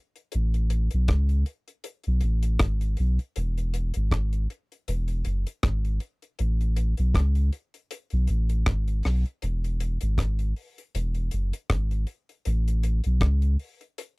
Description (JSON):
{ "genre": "roots reggae", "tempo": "79 BPM", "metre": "4/4", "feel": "swing 56% on 16ths", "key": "unclear", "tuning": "A4 = 441 Hz", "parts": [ { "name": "deep reggae drum kit", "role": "drums", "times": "0.2-14.2 s", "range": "hi-hat, kick drum, rim click", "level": "-27 LUFS", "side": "equal", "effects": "none" }, { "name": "soft dub sub bass", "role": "bass", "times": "0.3-13.6 s", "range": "E1 to C#2", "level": "-23 LUFS", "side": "equal", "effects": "none" } ], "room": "little or no reverb", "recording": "dry, close 1970s-style studio recording", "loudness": "-24 LUFS", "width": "side -29 dB against mid", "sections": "0.0-14.2 A section", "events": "none", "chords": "none" }